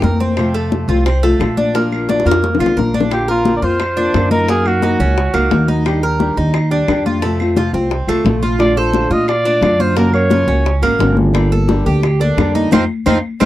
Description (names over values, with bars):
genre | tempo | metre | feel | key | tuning
latin, Cuban son and guajira | 175 BPM | 4/4 | straight | Bb major | A4 = 440 Hz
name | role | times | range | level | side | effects
nylon-string guitar | accompaniment | 0.0-13.5 s | C3 to A4 | -18 LUFS | left 2 dB | none
Cuban tres | arpeggios | 0.0-13.5 s | A3 to Bb4 | -19 LUFS | right 3 dB | none
upright bass | bass | 0.0-13.5 s | G1 to Bb2 | -17 LUFS | right 1 dB | none
bongos | percussion | 0.0-13.5 s | none | -21 LUFS | left 5 dB | none
congas | percussion | 0.0-13.5 s | none | -20 LUFS | left 4 dB | none
claves | percussion | 0.4-13.5 s | none | -29 LUFS | right 1 dB | none
warm trumpet | melody | 3.1-5.7, 8.6-10.8 s | F4 to Eb5 | -18 LUFS | right 1 dB | none
room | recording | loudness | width
light reverb | dry, close 1970s-style studio recording | -12 LUFS | side -14 dB against mid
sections
0.0-3.1 A section; 3.1-13.5 B section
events
drum fill 2.1-3.1; band accent 12.7-13.5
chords
0.4 F; 1.7 Bb; 3.1 Bbadd9; 4.5 Gb6; 5.9 Ebmaj7; 7.2 F; 8.6 Bbmaj7; 10.0 Gbmaj7; 11.3 Gmadd9; 12.7 F7